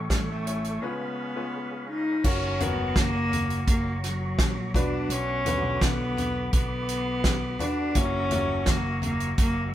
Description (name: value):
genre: piano-driven pop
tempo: 84 BPM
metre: 4/4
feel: straight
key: unclear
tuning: A4 = 441 Hz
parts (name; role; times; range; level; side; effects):
- bright upright piano; accompaniment; 0.0-9.7 s; A2 to C#5; -34 LUFS; left 4 dB; none
- tonewheel organ; sustained chords; 0.0-9.7 s; F#4 to D6; -38 LUFS; right 1 dB; chorus vibrato, fast rotary speaker
- picked electric bass; bass; 0.0-9.7 s; F#1 to B1; -31 LUFS; equal; none
- dark cello; melody; 0.1-9.7 s; F#3 to D#4; -28 LUFS; equal; none
- natural country drum kit; drums; 0.1-9.5 s; crash cymbal, hi-hat, kick drum, snare drum, toms; -26 LUFS; equal; none
room: moderate stone room reverb, RT60 1.2 s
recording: band playing live in one room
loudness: -24 LUFS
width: side -12 dB against mid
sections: 0.0-2.2 A section; 2.2-9.7 B section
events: break 0.8-2.2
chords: 0.0 A; 0.8 C#7; 2.2 F#; 4.7 Bm; 8.0 F#7